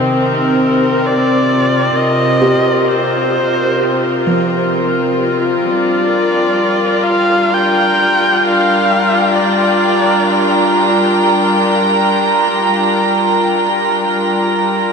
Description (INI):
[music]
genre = ambient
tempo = free time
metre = none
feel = none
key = unclear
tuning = A4 = 439 Hz
[part]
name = warm studio string section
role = sustained chords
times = 0.0-14.9 s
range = C3 to G5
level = -13 LUFS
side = left 1 dB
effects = shimmer reverb
[part]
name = buzzing kalimba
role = arpeggios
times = 0.0-7.0 s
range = F3 to G4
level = -20 LUFS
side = right 3 dB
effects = shimmer reverb, diffuse ambient delay
[part]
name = warm electric violin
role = melody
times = 0.1-10.7 s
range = Bb4 to G5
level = -17 LUFS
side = equal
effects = shimmer reverb, diffuse ambient delay
[part]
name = drifting glass-harmonics texture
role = texture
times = 7.0-14.9 s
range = Bb5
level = -18 LUFS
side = right 7 dB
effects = chorus, built-in reverb, shimmer reverb
[sound]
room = wet huge ambient reverb, RT60 9.2 s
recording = cassette tape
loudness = -11 LUFS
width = side -5 dB against mid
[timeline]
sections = 0.0-5.6 A section; 5.6-14.9 B section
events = none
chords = 0.0 Cm7; 5.6 Gm7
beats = free time